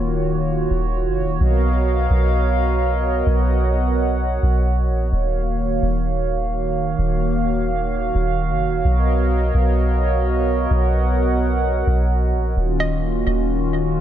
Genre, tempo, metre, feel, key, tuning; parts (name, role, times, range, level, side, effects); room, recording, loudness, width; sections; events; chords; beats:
hip hop; 129 BPM; 4/4; half-time; Eb minor; A4 = 440 Hz
hollow soft pad; sustained chords; 0.0-14.0 s; Eb3 to F#5; -21 LUFS; right 1 dB; chorus
soft 808-style bass; bass; 0.0-14.0 s; Eb1 to B1; -20 LUFS; equal
hollow square pluck; melody; 12.8-14.0 s; Eb5; -28 LUFS; right 3 dB; chorus, tape echo
digital ambience; echo-heavy mix; -17 LUFS; side -10 dB against mid
0.0-12.6 A section; 12.6-14.0 B section
0.0 Ebm9; 1.4 Bmaj9#11; 5.1 Ebm9; 8.8 Bmaj9#11; 12.6 Ebm9
0.01 0.48 0.94 | 1.41 1.87 2.34 2.80 | 3.27 3.73 4.20 4.66 | 5.13 5.59 6.06 6.52 | 6.99 7.45 7.92 8.38 | 8.85 9.31 9.78 10.24 | 10.71 11.17 11.64 12.10 | 12.57 13.03 13.50 13.96